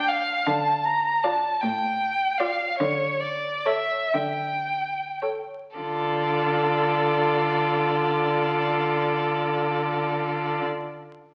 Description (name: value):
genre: classical, slow romantic movement for string quartet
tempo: 34-53 BPM (dotted quarters)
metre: 6/8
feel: rubato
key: D minor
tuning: A4 = 440 Hz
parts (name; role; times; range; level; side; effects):
- warm violin; second line; 0.0-10.6 s; A4 to F5; -28 LUFS; equal; none
- clear viola; accompaniment; 0.0-10.6 s; F4 to A4; -32 LUFS; equal; none
- clear cello; bass; 0.0-10.6 s; A2 to D3; -31 LUFS; equal; none
- clear violin; melody; 0.1-10.6 s; C#5 to Bb5; -29 LUFS; equal; none
room: wet recital hall reverb, RT60 1.3 s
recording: very old 78 rpm record, vinyl crackle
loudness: -24 LUFS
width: mono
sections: 0.5-5.8 A section; 5.8-11.3 B section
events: slowing down 0.0-5.8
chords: 0.5 Dm; 2.8 A7/D; 5.8 Dm